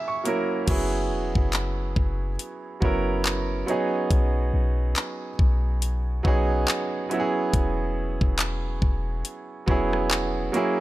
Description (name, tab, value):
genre	contemporary R&B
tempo	70 BPM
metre	4/4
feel	swing 58% on 16ths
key	unclear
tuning	A4 = 440 Hz
part	clear baby grand piano	accompaniment	0.0-10.8 s	F#3 to C#6	-26 LUFS	right 2 dB	none
part	smooth R&B drum kit	drums	0.3-10.8 s	crash cymbal, handclaps, hi-hat, kick drum, rim click	-25 LUFS	equal	none
part	clean 808-style bass	bass	0.7-10.5 s	E1 to B1	-26 LUFS	equal	none
room	little or no reverb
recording	none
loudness	-22 LUFS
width	side -16 dB against mid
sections	0.7-10.8 A section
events	break 0.0-0.7; grand piano fill 0.0-0.7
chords	0.0 F#9; 0.7 F#7sus4; 3.7 B6; 7.1 E6